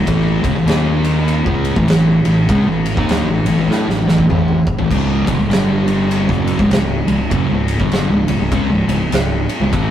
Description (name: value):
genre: stoner and doom metal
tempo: 100 BPM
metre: 4/4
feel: swing 61% on 8ths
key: C# minor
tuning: A4 = 436 Hz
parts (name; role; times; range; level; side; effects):
- thick fuzz guitar; riff; 0.0-9.9 s; C#2 to E4; -15 LUFS; equal; distortion
- fuzz fingered electric bass; bass; 0.0-9.9 s; C#1 to A2; -20 LUFS; equal; overdrive, tube saturation
- oversized low-tuned drum kit; drums; 0.1-9.9 s; crash cymbal, kick drum, ride cymbal, snare drum, toms; -19 LUFS; equal; none
room: light reverb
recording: rough rehearsal-room recording, tube saturation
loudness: -13 LUFS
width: side -10 dB against mid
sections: 0.0-9.9 A section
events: drum fill 3.7-4.9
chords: 0.1 A5; 0.7 D#5; 1.4 A5; 4.9 C#5; 5.5 G5; 6.3 C#5